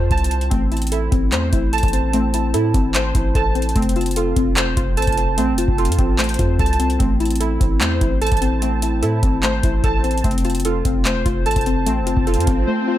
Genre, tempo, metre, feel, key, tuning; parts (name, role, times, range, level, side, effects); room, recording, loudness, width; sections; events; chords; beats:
hip hop, trap; 148 BPM; 4/4; half-time; A minor; A4 = 440 Hz
warbly lo-fi synth keys; arpeggios; 0.0-13.0 s; C4 to A5; -22 LUFS; right 1 dB; chorus, digital delay
long sustained 808-style bass; bass; 0.0-12.7 s; E1 to A2; -21 LUFS; equal
booming analog drum machine; drums; 0.1-12.7 s; handclaps, hi-hat, kick drum; -20 LUFS; equal
soft round pluck; accompaniment; 0.5-13.0 s; A3 to A4; -23 LUFS; left 3 dB; chorus
swell; sound effects; 12.2-13.0 s; -26 LUFS; left 2 dB
light reverb, digital ambience; -16 LUFS; side -13 dB against mid
0.0-13.0 A section
swell 12.2-13.0; break 12.7-13.0
0.0 F; 0.5 Am; 3.8 F; 7.0 Am; 10.2 F
0.11 | 0.51 0.92 1.32 1.73 | 2.13 2.54 2.95 3.35 | 3.76 4.16 4.57 4.97 | 5.38 5.78 6.19 6.59 | 7.00 7.41 7.81 8.22 | 8.62 9.03 9.43 9.84 | 10.24 10.65 11.05 11.46 | 11.87 12.27 12.68